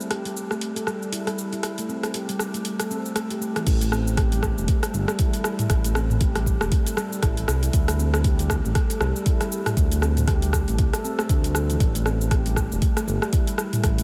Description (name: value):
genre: afro house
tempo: 118 BPM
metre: 4/4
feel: swing 58% on 16ths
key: unclear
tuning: A4 = 440 Hz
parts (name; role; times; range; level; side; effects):
- afro-pop drum kit; drums; 0.0-14.0 s; crash cymbal, hi-hat, rim click, shaker, toms; -30 LUFS; equal; none
- handpan; arpeggios; 0.1-14.0 s; E3 to A4; -31 LUFS; equal; sidechain pumping, diffuse ambient delay
- smooth synth bass; bass; 3.7-14.0 s; E1 to D2; -26 LUFS; equal; sidechain pumping
- electronic kick drum; drums; 3.7-14.0 s; none; -24 LUFS; equal; none
room: moderate huge ambient reverb, RT60 8.2 s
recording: dreamy mix soaked in reverb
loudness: -23 LUFS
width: mono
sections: 0.0-3.7 A section; 3.7-14.0 B section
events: drop 3.7-14.0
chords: 0.0 Emadd11; 7.7 D5; 11.8 A5